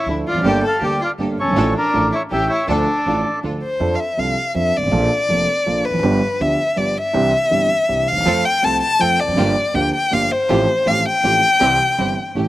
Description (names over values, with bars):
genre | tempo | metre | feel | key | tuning
tango | 161 BPM | 3/4 | rubato | D harmonic minor, F major from 3.8 s | A4 = 439 Hz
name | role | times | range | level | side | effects
bandoneon | melody | 0.0-3.4 s | A4 to A5 | -20 LUFS | equal | slapback echo
warm violin | second line | 0.0-12.5 s | C#4 to A5 | -18 LUFS | left 2 dB | slapback echo
dark baby grand piano | accompaniment | 0.1-12.5 s | F1 to A4 | -21 LUFS | right 2 dB | none
bright studio string section | stabs | 0.1-3.6, 8.3-12.5 s | F3 to A4 | -26 LUFS | right 2 dB | slapback echo
upright bass | bass | 0.1-12.5 s | E1 to F2 | -27 LUFS | equal | none
room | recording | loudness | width
little or no reverb | recorded outdoors, with no room sound | -15 LUFS | side -15 dB against mid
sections
0.0-3.8 A section; 3.8-12.5 B section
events
violin solo 3.8-12.5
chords
0.5 Gmadd9; 1.6 Dm/A; 2.3 A7; 2.7 Dm; 3.8 F6; 4.9 Bbmaj7; 6.0 G7; 7.1 Cadd9; 8.3 F; 9.4 Gm7; 10.5 Fadd9/A; 11.6 C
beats
0.08 | 0.45 0.83 1.20 | 1.57 1.94 2.31 | 2.69 3.06 3.43 | 3.80 4.18 4.55 | 4.92 5.29 5.66 | 6.04 6.41 6.78 | 7.15 7.52 7.89 | 8.27 8.64 9.01 | 9.38 9.75 10.12 | 10.49 10.86 11.23 | 11.61 11.98 12.35